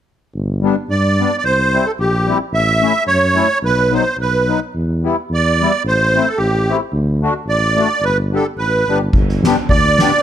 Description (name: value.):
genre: alpine folk, alpine dance band.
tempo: 109 BPM.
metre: 2/4.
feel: swing 54% on 8ths, rubato.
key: G major.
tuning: A4 = 439 Hz.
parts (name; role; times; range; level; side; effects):
mellow tuba; bass; 0.3-10.1 s; G1 to G2; -18 LUFS; equal; none.
accordion; accompaniment; 0.6-10.1 s; F#3 to G4; -20 LUFS; left 6 dB; light tremolo tuning.
musette accordion; melody; 0.9-10.2 s; G4 to E5; -15 LUFS; right 2 dB; none.
soft-mallet drum kit; drums; 9.1-10.1 s; crash cymbal, kick drum, snare drum; -15 LUFS; equal; none.
room: light reverb.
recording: close, detailed microphones.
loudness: -13 LUFS.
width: side -10 dB against mid.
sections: 0.3-9.1 A section; 9.1-10.2 A section.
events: none.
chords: 0.3 G; 1.4 C; 2.5 A; 3.6 B; 4.7 Em; 5.8 Am; 6.9 D; 8.0 G.